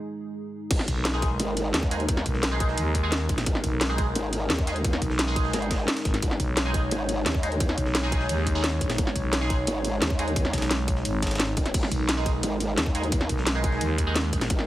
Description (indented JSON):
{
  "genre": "dark technical drum and bass",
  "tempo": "174 BPM",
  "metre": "4/4",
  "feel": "straight",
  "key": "G# minor",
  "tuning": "A4 = 442 Hz",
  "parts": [
    { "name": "dark analog pad", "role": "sustained chords", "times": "0.0-14.7 s", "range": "G#3 to C#5", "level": "-32 LUFS", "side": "equal", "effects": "chorus, sidechain pumping" },
    { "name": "growl bass", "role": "bass", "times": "0.7-14.7 s", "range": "D#1 to D#2", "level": "-28 LUFS", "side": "equal", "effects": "chorus, tube saturation" },
    { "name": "breakbeat sampler-style drum kit", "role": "drums", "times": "0.7-14.6 s", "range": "ride cymbal, snare drum", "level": "-38 LUFS", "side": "right 1 dB", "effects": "none" },
    { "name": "drum and bass drum kit", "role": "drums", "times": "0.7-14.7 s", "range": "crash cymbal, hi-hat, snare drum", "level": "-28 LUFS", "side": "equal", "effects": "none" },
    { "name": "electronic kick drum", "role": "drums", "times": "0.7-14.6 s", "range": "none", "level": "-27 LUFS", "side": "equal", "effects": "none" },
    { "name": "growling FM bass", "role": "bass", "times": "0.9-14.5 s", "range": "G#1 to D#2", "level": "-28 LUFS", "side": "equal", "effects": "none" },
    { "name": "band-passed chord stab", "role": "stabs", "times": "1.1-14.2 s", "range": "G#3 to G#4", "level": "-33 LUFS", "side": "right 1 dB", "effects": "phaser, wide subtle chorus, vintage 12-bit sampler grit, dub echo" }
  ],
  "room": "light reverb",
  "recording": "heavily compressed radio sound",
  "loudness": "-23 LUFS",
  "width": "side -14 dB against mid",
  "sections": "0.7-14.7 A section",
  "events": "break 0.0-0.7; drop 0.7-14.7",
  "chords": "0.0 G#5"
}